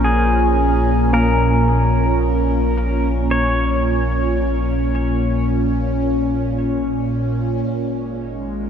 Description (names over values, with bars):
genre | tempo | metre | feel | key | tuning
ambient | 55 BPM | 4/4 | straight | unclear | A4 = 440 Hz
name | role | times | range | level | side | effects
pedal steel guitar | melody | 0.0-5.5 s | Ab4 to Db5 | -22 LUFS | left 1 dB | tape echo
evolving wavetable pad | sustained chords | 0.0-8.7 s | Bb2 to Bb4 | -19 LUFS | equal | phaser, built-in reverb
warm sub bass | bass | 0.0-8.7 s | Ab1 to Bb1 | -21 LUFS | equal | none
soft round pluck | arpeggios | 1.1-5.4 s | Bb3 | -28 LUFS | right 2 dB | none
room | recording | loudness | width
wet cathedral reverb, RT60 6.0 s | none | -16 LUFS | side -8 dB against mid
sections
0.0-8.7 A section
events
none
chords
0.0 Bbm; 7.7 Absus2